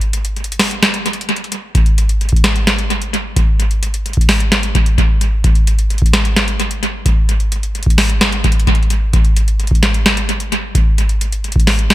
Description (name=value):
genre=hip hop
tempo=130 BPM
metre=4/4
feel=half-time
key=none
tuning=none
part: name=booming analog drum machine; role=drums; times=0.0-11.9 s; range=hi-hat, kick drum, snare drum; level=-12 LUFS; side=equal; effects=analog delay
room=light reverb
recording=echo-heavy mix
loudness=-12 LUFS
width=side -15 dB against mid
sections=0.0-1.7 A section; 1.7-11.9 A section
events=break 0.0-1.7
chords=none